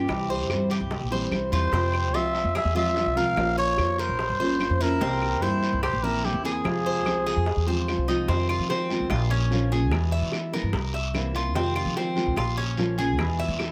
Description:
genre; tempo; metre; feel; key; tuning
latin, Cuban son and guajira; 147 BPM; 4/4; straight; F harmonic minor; A4 = 440 Hz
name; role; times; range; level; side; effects
nylon-string guitar; accompaniment; 0.0-13.7 s; B2 to C5; -31 LUFS; equal; none
Cuban tres; arpeggios; 0.0-13.7 s; C4 to E5; -33 LUFS; equal; none
upright bass; bass; 0.0-13.7 s; G1 to F3; -30 LUFS; equal; none
bongos; percussion; 0.1-13.7 s; none; -38 LUFS; equal; none
claves; percussion; 0.1-13.7 s; none; -37 LUFS; equal; none
guiro; percussion; 0.1-13.7 s; none; -41 LUFS; equal; none
trumpet with cup mute; melody; 1.5-7.8 s; G4 to F5; -28 LUFS; equal; none
room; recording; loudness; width
little or no reverb; close, detailed microphones; -25 LUFS; mono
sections
0.0-8.3 A section; 8.3-13.7 B section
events
none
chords
0.1 C; 1.7 Fm; 3.4 Bbmadd9; 5.0 C7; 6.7 Fm; 8.3 Fm7; 9.1 Bbm; 9.9 E; 10.7 C7; 11.6 Fm7; 12.4 Bbm; 13.2 E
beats
| 0.09 0.50 0.91 1.32 | 1.73 2.14 2.55 2.96 | 3.37 3.78 4.19 4.60 | 5.01 5.42 5.83 6.24 | 6.65 7.06 7.47 7.88 | 8.29 8.70 9.10 9.51 | 9.92 10.33 10.74 11.15 | 11.55 11.96 12.37 12.78 | 13.19 13.60

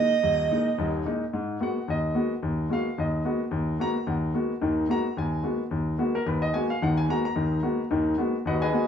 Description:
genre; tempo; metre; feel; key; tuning
jazz; 219 BPM; 4/4; swing 58% on 8ths; G# dorian; A4 = 441 Hz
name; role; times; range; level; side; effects
breathy soprano saxophone; melody; 0.0-1.0 s; Eb5; -24 LUFS; right 8 dB; none
warm baby grand piano; accompaniment; 0.0-8.9 s; Eb1 to A#5; -24 LUFS; left 1 dB; none
room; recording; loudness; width
wet studio reverb, RT60 0.8 s; small room ambience; -24 LUFS; side -8 dB against mid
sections
0.0-1.3 A section; 1.3-8.9 B section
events
none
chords
0.0 Absus2; 1.3 G#m9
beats
| 0.23 0.50 0.78 1.05 | 1.32 1.60 1.87 2.15 | 2.42 2.70 2.97 3.25 | 3.52 3.79 4.07 4.34 | 4.62 4.89 5.16 5.44 | 5.71 5.99 6.26 6.53 | 6.81 7.08 7.35 7.63 | 7.90 8.17 8.45 8.72

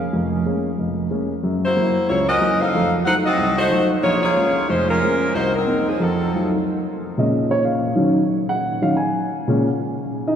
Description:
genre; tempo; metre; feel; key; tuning
jazz; 184 BPM; 4/4; swing 62% on 8ths; Bb minor; A4 = 440 Hz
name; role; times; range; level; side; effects
warm baby grand piano; accompaniment; 0.0-10.4 s; F1 to Ab5; -19 LUFS; equal; none
warm saxophone section; melody; 1.7-6.5 s; F3 to Gb5; -20 LUFS; left 1 dB; none
room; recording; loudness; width
wet cathedral reverb, RT60 5.0 s; recorded in a church or concert hall; -17 LUFS; side -8 dB against mid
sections
0.0-6.6 A section; 6.6-10.4 B section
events
grand piano solo 6.6-10.4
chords
0.0 Bbm7; 1.4 Gb7; 2.7 F7b9; 4.0 Bbm7; 5.3 Cm7b5; 6.0 F7b9; 6.6 Bbm7; 8.0 Ebm7; 9.3 Bbm7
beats
| 0.12 0.45 0.77 1.10 | 1.42 1.75 2.08 2.40 | 2.73 3.05 3.38 3.70 | 4.03 4.36 4.68 5.01 | 5.34 5.66 5.99 6.32 | 6.64 6.97 7.30 7.62 | 7.95 8.28 8.61 8.94 | 9.26 9.59 9.92 10.24

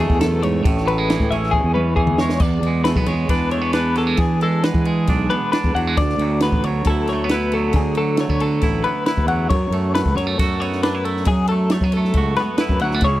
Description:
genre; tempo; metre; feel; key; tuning
math rock and midwest emo; 136 BPM; 4/4; straight; unclear; A4 = 441 Hz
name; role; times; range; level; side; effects
twangy electric guitar; accompaniment; 0.0-13.2 s; D2 to F#4; -23 LUFS; right 6 dB; none
twelve-string electric guitar; arpeggios; 0.0-13.2 s; G#4 to F#5; -23 LUFS; left 5 dB; tremolo
fuzz fingered electric bass; bass; 0.0-13.2 s; A1 to F#3; -20 LUFS; equal; overdrive
compact cocktail drum kit; drums; 0.1-13.1 s; crash cymbal, kick drum, ride cymbal, snare drum, toms; -21 LUFS; equal; none
room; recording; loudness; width
little or no reverb; dry, close 1970s-style studio recording; -16 LUFS; side -15 dB against mid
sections
0.0-2.4 A section; 2.4-13.2 B section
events
drum fill 1.5-2.4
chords
0.0 E13sus4; 0.6 Amaj9; 2.4 E7; 6.0 D69; 9.5 F#m11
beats
0.20 | 0.65 1.09 1.53 1.98 | 2.42 2.86 3.31 3.75 | 4.20 4.64 5.08 5.53 | 5.97 6.42 6.86 7.30 | 7.74 8.19 8.63 9.07 | 9.51 9.95 10.39 10.83 | 11.28 11.71 12.15 12.60 | 13.04

